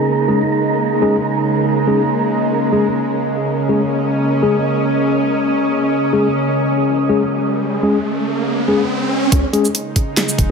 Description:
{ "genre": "deep dubstep", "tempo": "141 BPM", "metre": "4/4", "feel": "swing 53% on 16ths, half-time", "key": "unclear", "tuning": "A4 = 440 Hz", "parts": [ { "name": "bowed-like drone", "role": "sustained chords", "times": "0.0-10.5 s", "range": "C#3 to D#4", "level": "-18 LUFS", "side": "right 1 dB", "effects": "built-in reverb" }, { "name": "wind-like tuned noise texture", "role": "texture", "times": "0.0-8.9 s", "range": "A#3 to D#5", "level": "-22 LUFS", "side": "right 1 dB", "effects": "built-in reverb" }, { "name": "mellow tine electric piano", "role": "stabs", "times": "0.3-9.7 s", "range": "G#3 to G#4", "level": "-20 LUFS", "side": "left 3 dB", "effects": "medium stereo tremolo, dub echo" }, { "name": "riser", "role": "sound effects", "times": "6.9-9.3 s", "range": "none", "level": "-22 LUFS", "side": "right 2 dB", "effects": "none" }, { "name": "soft dub sub bass", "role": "bass", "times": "9.3-10.5 s", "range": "E1 to C#2", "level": "-18 LUFS", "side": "right 1 dB", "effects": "tube saturation" }, { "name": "dubstep drum kit", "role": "drums", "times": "9.3-10.5 s", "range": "handclaps, hi-hat, shaker, snare drum", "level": "-18 LUFS", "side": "right 1 dB", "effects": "low-pass filter on hats, low-pass filter on perc, low-pass filter on snare" }, { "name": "electronic kick drum", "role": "drums", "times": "9.3-10.5 s", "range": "none", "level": "-16 LUFS", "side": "equal", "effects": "none" } ], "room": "moderate lush hall reverb, RT60 2.2 s", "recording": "none", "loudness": "-14 LUFS", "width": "side -5 dB against mid", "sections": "0.0-9.3 A section; 9.3-10.5 B section", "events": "riser 6.9-9.3; drop 9.3-10.5", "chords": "0.0 C#5", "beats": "0.39 | 0.81 1.24 1.66 2.09 | 2.51 2.94 3.36 3.79 | 4.21 4.64 5.07 5.49 | 5.92 6.34 6.77 7.19 | 7.62 8.04 8.47 8.89 | 9.32 9.75 10.17" }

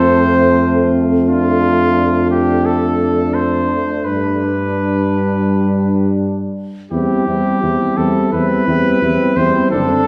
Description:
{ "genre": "classical, brass quintet", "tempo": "86 BPM", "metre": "4/4", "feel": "rubato", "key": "unclear", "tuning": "A4 = 440 Hz", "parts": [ { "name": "clear trumpet", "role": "melody", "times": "0.0-10.1 s", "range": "F4 to C5", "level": "-20 LUFS", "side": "equal", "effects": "none" }, { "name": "warm flugelhorn", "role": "second line", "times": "0.0-10.1 s", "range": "D4 to F4", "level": "-27 LUFS", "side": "equal", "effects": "none" }, { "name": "warm French horn", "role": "accompaniment", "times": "0.0-10.1 s", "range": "C4 to D4", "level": "-22 LUFS", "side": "equal", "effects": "none" }, { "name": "warm trombone", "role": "accompaniment", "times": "0.0-10.1 s", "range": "D3 to A3", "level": "-23 LUFS", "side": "equal", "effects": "none" }, { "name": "warm tuba", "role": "bass", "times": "0.0-9.9 s", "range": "F#1 to G2", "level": "-20 LUFS", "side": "equal", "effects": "none" } ], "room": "wet recital hall reverb, RT60 1.7 s", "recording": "recorded in a church or concert hall", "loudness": "-15 LUFS", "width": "mono", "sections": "0.0-10.1 A section", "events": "none", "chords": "0.0 F; 1.3 Dm/F; 4.0 G; 6.9 C/E", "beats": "0.61 | 1.29 1.97 2.65 3.34 | 4.05 4.76 5.49 6.20 | 6.91 7.62 8.33 9.02 | 9.72" }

